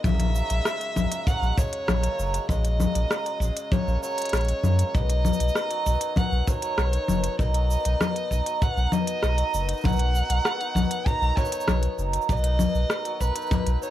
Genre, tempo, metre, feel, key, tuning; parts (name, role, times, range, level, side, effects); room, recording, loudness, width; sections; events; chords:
folktronica; 98 BPM; 4/4; straight; B major; A4 = 437 Hz
dark violin; melody; 0.0-13.9 s; B4 to A#5; -30 LUFS; equal; digital delay
hammered dulcimer; arpeggios; 0.0-13.9 s; A#2 to D#4; -31 LUFS; right 2 dB; digital delay
warm sub bass; bass; 0.0-13.8 s; F#1 to F#2; -24 LUFS; equal
kick drum; drums; 0.0-13.6 s; -25 LUFS; equal
organic electronic drum kit; drums; 0.0-13.9 s; congas, hi-hat, rim click, shaker; -27 LUFS; left 3 dB
light reverb; vinyl crackle; -22 LUFS; side -12 dB against mid
0.0-13.9 A section
0.0 F#add9; 4.9 B